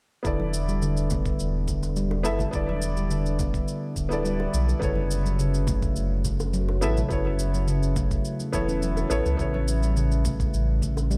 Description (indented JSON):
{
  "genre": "organic downtempo",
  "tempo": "105 BPM",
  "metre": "4/4",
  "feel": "straight",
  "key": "E dorian",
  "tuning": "A4 = 439 Hz",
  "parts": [
    { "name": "felt-muted upright piano", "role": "accompaniment", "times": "0.2-11.2 s", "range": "B3 to E5", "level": "-33 LUFS", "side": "equal", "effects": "sidechain pumping, delay" },
    { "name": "handpan", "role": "arpeggios", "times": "0.2-11.2 s", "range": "C#3 to C#4", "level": "-31 LUFS", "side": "equal", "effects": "low-pass filter, delay" },
    { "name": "warm sub bass", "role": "bass", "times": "0.2-11.2 s", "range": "D1 to C#2", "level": "-28 LUFS", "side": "equal", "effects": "tube saturation, sidechain pumping" },
    { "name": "electronic kick drum", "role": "drums", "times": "0.2-10.9 s", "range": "none", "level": "-32 LUFS", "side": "equal", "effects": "none" },
    { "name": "shaker", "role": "drums", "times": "0.2-11.2 s", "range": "none", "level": "-41 LUFS", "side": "equal", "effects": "none" },
    { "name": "congas and bongos", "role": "percussion", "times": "0.4-11.1 s", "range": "none", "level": "-39 LUFS", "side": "equal", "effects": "none" }
  ],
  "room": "light reverb, small room ambience",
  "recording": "none",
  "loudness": "-25 LUFS",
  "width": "mono",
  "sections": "0.2-11.2 A section",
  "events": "filter sweep on handpan 0.2-11.2",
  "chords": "0.2 Em7; 4.8 F#m7; 9.4 A"
}